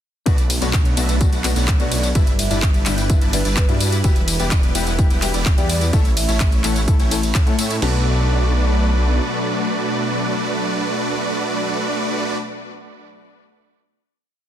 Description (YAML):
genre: EDM, festival progressive house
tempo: 127 BPM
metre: 4/4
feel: straight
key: B minor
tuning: A4 = 439 Hz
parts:
  - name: warm concert grand piano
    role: accompaniment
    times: 0.3-12.5 s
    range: G2 to A4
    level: -28 LUFS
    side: left 8 dB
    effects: sidechain pumping, ping-pong delay
  - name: lush unison pad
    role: sustained chords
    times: 0.3-12.4 s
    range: B2 to B4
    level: -28 LUFS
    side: equal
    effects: chorus, phaser, sidechain pumping
  - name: supersaw chords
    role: riff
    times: 0.3-12.4 s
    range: G3 to A5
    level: -24 LUFS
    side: right 2 dB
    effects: sidechain pumping, ping-pong delay
  - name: detuned saw bass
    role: bass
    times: 0.3-9.2 s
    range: E1 to A2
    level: -20 LUFS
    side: equal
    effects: sidechain pumping
  - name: big-room dance drum kit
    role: drums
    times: 0.3-7.8 s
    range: handclaps, hi-hat, ride cymbal, tambourine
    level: -24 LUFS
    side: left 1 dB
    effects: overdrive
  - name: house drum kit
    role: drums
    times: 0.3-7.9 s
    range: crash cymbal, kick drum, snare drum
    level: -17 LUFS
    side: equal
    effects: none
  - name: vibraphone with soft mallets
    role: melody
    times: 1.8-6.4 s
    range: F#4 to E5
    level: -30 LUFS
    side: right 2 dB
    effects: ping-pong delay
room: digital ambience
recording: dense, heavily limited modern master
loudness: -16 LUFS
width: side -10 dB against mid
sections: 0.3-7.8 drop; 7.8-11.6 final chord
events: drop 0.3-7.8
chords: 0.3 Bm7; 2.2 G6; 4.0 Em; 5.9 A; 7.8 Bm7